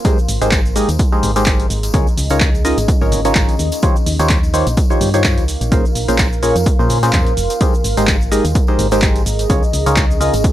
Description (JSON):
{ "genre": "piano house", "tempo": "127 BPM", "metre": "4/4", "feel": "swing 55% on 16ths", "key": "unclear", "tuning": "A4 = 440 Hz", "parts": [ { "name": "percussive organ stab", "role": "riff", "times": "0.0-10.3 s", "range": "Bb2 to Eb5", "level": "-18 LUFS", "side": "equal", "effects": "chorus, phaser, sidechain pumping" }, { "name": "electronic kick drum", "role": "drums", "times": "0.0-10.5 s", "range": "none", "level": "-15 LUFS", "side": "equal", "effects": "overdrive" }, { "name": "punchy analog drum machine", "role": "drums", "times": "0.0-10.5 s", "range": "handclaps, hi-hat, shaker", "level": "-22 LUFS", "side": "right 1 dB", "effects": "overdrive" }, { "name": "deep dark ambient pad", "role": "texture", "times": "0.0-10.5 s", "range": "Db4 to C6", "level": "-24 LUFS", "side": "right 2 dB", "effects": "chorus, built-in reverb, sidechain pumping" }, { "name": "tambourine and congas", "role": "percussion", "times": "0.1-10.5 s", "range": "none", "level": "-32 LUFS", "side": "left 4 dB", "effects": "none" }, { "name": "solid FM bass", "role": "bass", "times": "0.3-10.4 s", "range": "F1 to Bb2", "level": "-19 LUFS", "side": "equal", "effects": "sidechain pumping" } ], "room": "little or no reverb", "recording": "dry, gritty hardware recording", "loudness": "-12 LUFS", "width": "side -13 dB against mid", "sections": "0.0-10.5 A section", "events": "none", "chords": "0.0 Abmaj9; 1.9 Db69; 3.6 Eb13; 5.7 Bbm9; 7.6 Abmaj9; 9.5 Db69" }